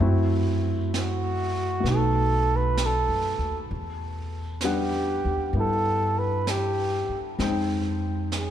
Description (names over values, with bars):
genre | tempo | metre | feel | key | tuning
jazz ballad | 65 BPM | 4/4 | swing 68% on 8ths | unclear | A4 = 440 Hz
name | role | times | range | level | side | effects
warm baby grand piano | accompaniment | 0.0-8.5 s | G3 to G5 | -29 LUFS | left 3 dB | none
upright bass | bass | 0.0-8.5 s | B1 to G2 | -27 LUFS | right 1 dB | none
jazz brush drum kit | drums | 0.0-8.5 s | brushed snare drum, hi-hat, snare drum | -36 LUFS | right 3 dB | none
breathy flugelhorn | melody | 1.0-8.5 s | F#4 to B4 | -28 LUFS | right 2 dB | none
room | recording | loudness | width
moderate cathedral reverb, RT60 5.0 s | recorded in a church or concert hall | -23 LUFS | side -10 dB against mid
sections
0.0-8.5 A section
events
none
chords
0.0 F#m7b5; 1.9 B7; 3.7 Em9; 7.4 Fm7